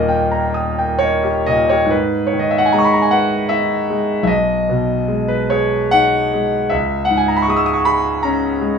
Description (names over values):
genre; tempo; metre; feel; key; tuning
classical, romantic nocturne for solo piano; 63-80 BPM; 3/4; rubato; G# minor; A4 = 440 Hz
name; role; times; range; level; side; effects
bright concert grand piano; solo; 0.0-8.8 s; D#1 to E6; -14 LUFS; equal; none
room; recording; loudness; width
light reverb; small room ambience; -14 LUFS; side -6 dB against mid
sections
0.0-1.9 A section; 1.9-8.8 B section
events
none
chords
0.0 D#; 1.9 G#m; 4.3 G#m/B; 6.7 C#5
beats
0.06 0.99 | 1.91 2.73 3.52 | 4.30 5.08 5.93 | 6.71 7.47 8.22